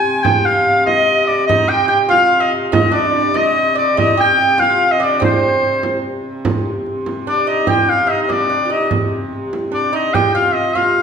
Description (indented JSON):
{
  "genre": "medieval dance",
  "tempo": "97 BPM (dotted quarters)",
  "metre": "6/8",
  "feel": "straight",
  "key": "C minor",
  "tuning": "A4 = 445 Hz",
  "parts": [
    { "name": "clear shawm", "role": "melody", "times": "0.0-11.0 s", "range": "C5 to Ab5", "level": "-15 LUFS", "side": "left 1 dB", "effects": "none" },
    { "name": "tenor recorder", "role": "second line", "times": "0.0-6.0 s", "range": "C5 to Ab5", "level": "-20 LUFS", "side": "equal", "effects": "none" },
    { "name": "dark hurdy-gurdy", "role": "drone", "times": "0.0-11.0 s", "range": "C3", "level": "-23 LUFS", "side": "equal", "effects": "none" },
    { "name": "frame drum", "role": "percussion", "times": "0.0-11.0 s", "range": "none", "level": "-21 LUFS", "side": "right 3 dB", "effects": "none" },
    { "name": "lute", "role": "second line", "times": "1.5-11.0 s", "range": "C4 to G4", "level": "-22 LUFS", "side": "right 5 dB", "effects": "none" }
  ],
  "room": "wet recital hall reverb, RT60 1.5 s",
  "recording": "recorded in a church or concert hall",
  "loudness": "-13 LUFS",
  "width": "side -6 dB against mid",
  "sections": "0.0-6.4 A section; 6.4-11.0 B section",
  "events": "none",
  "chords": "none"
}